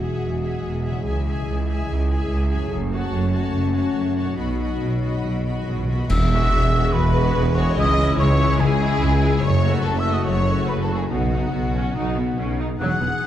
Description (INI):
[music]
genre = cinematic, heroic adventure film score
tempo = 144 BPM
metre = 4/4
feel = straight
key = E major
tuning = A4 = 439 Hz
[part]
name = clear chamber violin section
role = melody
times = 0.0-13.3 s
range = F#4 to B5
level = -34 LUFS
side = left 5 dB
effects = none
[part]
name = rich symphonic violin section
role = second line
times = 0.0-13.3 s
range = F#4 to F#5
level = -32 LUFS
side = left 1 dB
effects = none
[part]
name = rich symphonic viola section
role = accompaniment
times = 0.0-13.3 s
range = F#3 to G#4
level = -29 LUFS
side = equal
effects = none
[part]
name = dark French horn section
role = sustained chords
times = 0.0-5.8 s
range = F#3 to F#4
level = -27 LUFS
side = left 4 dB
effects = none
[part]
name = concert harp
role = arpeggios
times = 0.0-13.3 s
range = F#2 to B4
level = -27 LUFS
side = left 7 dB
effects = none
[part]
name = bright symphonic cello section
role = bass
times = 0.0-13.1 s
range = C#2 to B2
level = -26 LUFS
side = right 2 dB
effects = none
[part]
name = clear symphonic double bass section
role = bass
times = 0.0-13.1 s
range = E1 to C#2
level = -25 LUFS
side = right 2 dB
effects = none
[part]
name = timpani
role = percussion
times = 4.4-6.7 s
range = E2 to B2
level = -30 LUFS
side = equal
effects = none
[part]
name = concert flute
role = second line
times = 6.1-13.3 s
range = F#5 to F#6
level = -26 LUFS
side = left 1 dB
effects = none
[part]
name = warm tuba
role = bass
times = 6.1-13.1 s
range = E1 to C#2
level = -26 LUFS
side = right 2 dB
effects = none
[part]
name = clash cymbals and concert bass drum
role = percussion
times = 6.1-6.9 s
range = none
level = -24 LUFS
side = equal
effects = none
[sound]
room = moderate concert hall reverb, RT60 1.9 s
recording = dark, warm production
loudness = -18 LUFS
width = side -11 dB against mid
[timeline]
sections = 0.0-6.1 A section; 6.1-13.3 B section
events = timpani fill 4.4-6.1; band accent 6.1-6.5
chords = 0.0 Eadd9; 1.1 C#m; 2.7 F#m; 4.4 B; 6.1 Eadd9; 7.8 C#m; 9.4 F#m; 11.1 B